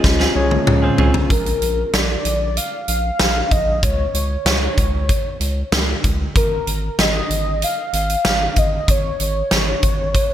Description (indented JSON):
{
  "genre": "1980s-style pop",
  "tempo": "95 BPM",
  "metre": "4/4",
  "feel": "straight",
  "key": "unclear",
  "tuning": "A4 = 440 Hz",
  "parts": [
    { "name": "warm velvety synth lead", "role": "melody", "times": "0.0-10.3 s", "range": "Bb4 to F5", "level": "-22 LUFS", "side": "left 1 dB", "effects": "chorus" },
    { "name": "tine electric piano", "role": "accompaniment", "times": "0.0-1.3 s", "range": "Db3 to Eb5", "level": "-20 LUFS", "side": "left 2 dB", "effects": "medium tremolo" },
    { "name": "ethereal airy pad", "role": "sustained chords", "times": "0.0-1.3 s", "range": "Ab3 to F4", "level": "-29 LUFS", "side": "right 1 dB", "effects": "none" },
    { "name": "clean electric guitar", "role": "riff", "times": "0.0-1.2 s", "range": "C4 to Ab4", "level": "-26 LUFS", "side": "right 6 dB", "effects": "wide subtle chorus, digital delay" },
    { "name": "round analog bass", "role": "bass", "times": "0.0-10.2 s", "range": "Ab1 to Db2", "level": "-22 LUFS", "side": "equal", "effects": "none" },
    { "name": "huge arena drum kit", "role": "drums", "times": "0.0-10.3 s", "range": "hi-hat, kick drum, snare drum, toms", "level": "-18 LUFS", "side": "equal", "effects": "gated reverb" }
  ],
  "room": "light reverb",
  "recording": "bright 1980s-style digital production",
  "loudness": "-16 LUFS",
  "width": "side -11 dB against mid",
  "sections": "0.0-1.3 A section; 1.3-10.3 B section",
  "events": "drum fill 0.0-1.3",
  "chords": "0.0 Dbmaj7; 1.3 Bb; 3.8 N.C.; 6.4 Db5/Ab"
}